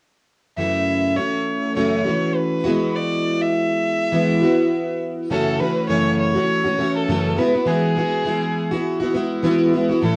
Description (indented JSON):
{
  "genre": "pop",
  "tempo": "102 BPM",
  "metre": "4/4",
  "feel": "swing 55% on 16ths",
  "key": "unclear",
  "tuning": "A4 = 445 Hz",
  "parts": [
    { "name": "rich violin", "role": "melody", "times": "0.6-10.2 s", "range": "G#4 to E5", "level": "-26 LUFS", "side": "equal", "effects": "none" },
    { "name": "picked plugged-in steel-string acoustic guitar", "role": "accompaniment", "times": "0.6-10.2 s", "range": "F#2 to A4", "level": "-21 LUFS", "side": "equal", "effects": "double-tracked, cassette tape" }
  ],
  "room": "wet small room reverb, RT60 0.5 s",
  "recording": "home recording on cassette",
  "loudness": "-20 LUFS",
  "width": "mono",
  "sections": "0.6-5.3 A section; 5.3-10.2 B section",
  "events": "none",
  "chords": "0.6 F#m7; 2.6 Eadd9; 5.3 F#m7; 7.4 Eadd9",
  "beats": "| 0.57 1.17 1.76 2.35 | 2.94 3.53 4.12 4.72 | 5.31 5.90 6.49 7.08 | 7.67 8.26 8.85 9.44 | 10.03"
}